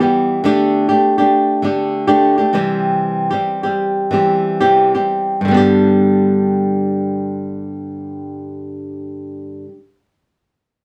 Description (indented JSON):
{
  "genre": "pop",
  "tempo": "86-102 BPM",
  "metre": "4/4",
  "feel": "straight",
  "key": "G major",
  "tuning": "A4 = 440 Hz",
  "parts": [
    { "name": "flamenco guitar", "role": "accompaniment", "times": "0.0-9.8 s", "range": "G2 to G4", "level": "-16 LUFS", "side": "equal", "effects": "none" }
  ],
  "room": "wet studio ambience, RT60 0.5 s",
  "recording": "none",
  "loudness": "-15 LUFS",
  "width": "mono",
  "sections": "0.0-5.5 A section; 5.5-8.2 B section",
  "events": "slowing down 0.4-5.5",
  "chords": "0.4 Dsus4; 2.5 C; 5.5 G"
}